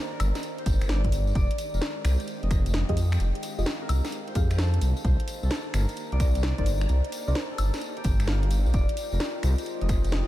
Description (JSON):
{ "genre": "UK garage, two-step garage", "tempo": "130 BPM", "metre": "4/4", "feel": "swing 66% on 16ths", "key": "F dorian", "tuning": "A4 = 440 Hz", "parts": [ { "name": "concert harp", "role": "melody", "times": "0.0-10.3 s", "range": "F4 to Eb5", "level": "-37 LUFS", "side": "left 2 dB", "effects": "ping-pong delay" }, { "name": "soft string machine", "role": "sustained chords", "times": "0.0-10.3 s", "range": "Ab3 to G4", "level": "-41 LUFS", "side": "equal", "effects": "ensemble chorus, sidechain pumping" }, { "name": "warbly tape-like pad", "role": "texture", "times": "0.0-10.3 s", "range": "Eb3 to Bb5", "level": "-41 LUFS", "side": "equal", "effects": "chorus, built-in reverb, sidechain pumping" }, { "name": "dark detuned saw bass", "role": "bass", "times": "0.2-10.2 s", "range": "F1 to F2", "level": "-24 LUFS", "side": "equal", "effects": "tube saturation" }, { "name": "house drum kit", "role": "drums", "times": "0.2-10.2 s", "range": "finger snaps, hi-hat, snare drum, woodblock", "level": "-34 LUFS", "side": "equal", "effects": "overdrive" }, { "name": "tambourine", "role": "percussion", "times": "0.2-10.2 s", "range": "none", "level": "-44 LUFS", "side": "left 5 dB", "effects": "none" }, { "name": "electronic kick drum", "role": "drums", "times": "0.7-10.0 s", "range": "none", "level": "-26 LUFS", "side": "equal", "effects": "none" }, { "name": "deep mellow chord stab", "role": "stabs", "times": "2.9-7.3 s", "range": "Eb4 to F5", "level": "-39 LUFS", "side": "equal", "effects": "none" } ], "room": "little or no reverb", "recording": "none", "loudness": "-24 LUFS", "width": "side -15 dB against mid", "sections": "0.0-10.3 A section", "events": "none", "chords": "0.0 Cm9; 1.4 Fm9; 4.8 Cm9; 8.7 Fm9" }